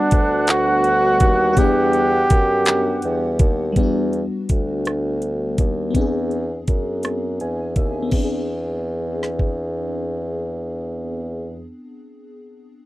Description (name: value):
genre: slow six-eight R&B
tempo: 55 BPM (dotted quarters)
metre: 6/8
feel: straight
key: E minor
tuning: A4 = 442 Hz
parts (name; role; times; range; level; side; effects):
- breathy flugelhorn; melody; 0.0-3.4 s; D4 to G4; -18 LUFS; right 1 dB; none
- FM electric piano with soft pad layer; accompaniment; 0.0-12.9 s; G3 to G#5; -26 LUFS; left 2 dB; chorus, tremolo
- mellow horn section; stabs; 0.0-3.4 s; D3 to F#5; -26 LUFS; right 5 dB; none
- dark bassoon; bass; 0.1-11.7 s; D2 to F#2; -23 LUFS; equal; none
- smooth R&B drum kit; drums; 0.1-9.6 s; crash cymbal, handclaps, hi-hat, kick drum, rim click, snare drum; -18 LUFS; equal; none
room: little or no reverb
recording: dry, close 1970s-style studio recording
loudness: -18 LUFS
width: side -17 dB against mid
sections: 0.0-3.8 A section; 3.8-8.1 B section; 8.1-12.5 C section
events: FM electric piano fill 7.0-8.1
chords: 0.0 Em9; 5.9 E7b13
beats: 0.48 | 1.58 2.67 | 3.76 4.85 | 5.94 7.03 | 8.12 9.21 | 10.30 11.39